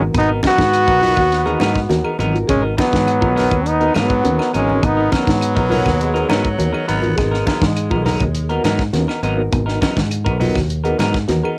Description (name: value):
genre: afrobeat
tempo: 102 BPM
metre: 4/4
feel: straight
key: G# minor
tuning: A4 = 440 Hz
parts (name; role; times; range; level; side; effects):
- clear trumpet; second line; 0.0-6.9 s; F#3 to B3; -27 LUFS; equal; cassette tape
- overdriven reed electric piano; accompaniment; 0.0-11.5 s; B3 to A#4; -27 LUFS; equal; fast tremolo, cassette tape
- semi-hollow electric guitar; stabs; 0.0-11.6 s; F#3 to A#4; -25 LUFS; equal; cassette tape
- fingered electric bass; bass; 0.0-11.4 s; G#1 to G#2; -23 LUFS; equal; none
- congas; percussion; 0.0-11.4 s; none; -28 LUFS; equal; none
- marimba with soft mallets; arpeggios; 0.1-11.5 s; B3 to G#4; -28 LUFS; equal; cassette tape
- tight funk drum kit; drums; 0.1-11.4 s; hi-hat, kick drum, snare drum; -25 LUFS; equal; cassette tape
- claves; percussion; 0.1-11.6 s; none; -35 LUFS; equal; none
- warm trombone; melody; 0.2-6.8 s; B3 to F#4; -20 LUFS; equal; cassette tape
- raspy baritone saxophone; second line; 5.7-8.3 s; F#3 to B3; -28 LUFS; equal; cassette tape, analog delay
room: light reverb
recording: home recording on cassette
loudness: -17 LUFS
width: mono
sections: 0.0-11.6 A section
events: none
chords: 0.0 G#m9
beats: | 0.14 0.73 1.31 1.90 | 2.49 3.07 3.66 4.25 | 4.83 5.42 6.00 6.59 | 7.18 7.76 8.35 8.94 | 9.53 10.11 10.70 11.29